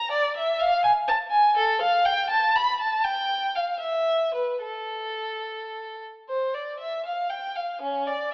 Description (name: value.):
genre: classical, baroque-style suite movement for unaccompanied violin.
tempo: 70-84 BPM (dotted quarters).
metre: 6/8.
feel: rubato.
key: unclear.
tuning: A4 = 440 Hz.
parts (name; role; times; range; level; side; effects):
clear violin; solo; 0.0-8.3 s; C#4 to B5; -22 LUFS; equal; none.
room: wet recital hall reverb, RT60 1.7 s.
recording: AM radio sound.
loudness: -22 LUFS.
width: side -25 dB against mid.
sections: 0.0-6.3 A section; 6.3-8.3 A section.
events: none.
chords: none.